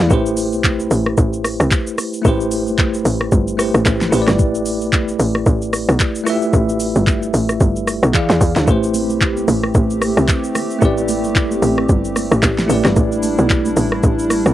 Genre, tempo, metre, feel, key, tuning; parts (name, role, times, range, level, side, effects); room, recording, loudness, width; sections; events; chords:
amapiano; 112 BPM; 4/4; swing 58% on 16ths; A minor; A4 = 440 Hz
bell-like tine electric piano; accompaniment; 0.0-14.5 s; E3 to F5; -19 LUFS; equal; fast stereo tremolo, cassette tape
tight log drum bass; bass; 0.0-14.5 s; G1 to E2; -18 LUFS; equal
smooth R&B drum kit; drums; 0.1-14.5 s; handclaps, hi-hat, kick drum, rim click, shaker, snare drum; -18 LUFS; equal; cassette tape
hollow soft pad; sustained chords; 8.9-14.5 s; G3 to G4; -22 LUFS; equal; chorus, sidechain pumping, cassette tape
congas; percussion; 8.9-14.4 s; -27 LUFS; right 10 dB
light reverb; home recording on cassette; -14 LUFS; side -13 dB against mid
0.0-14.5 A section
0.1 Am9; 4.1 Em7; 8.1 E7b9; 8.7 Am9; 12.7 Em7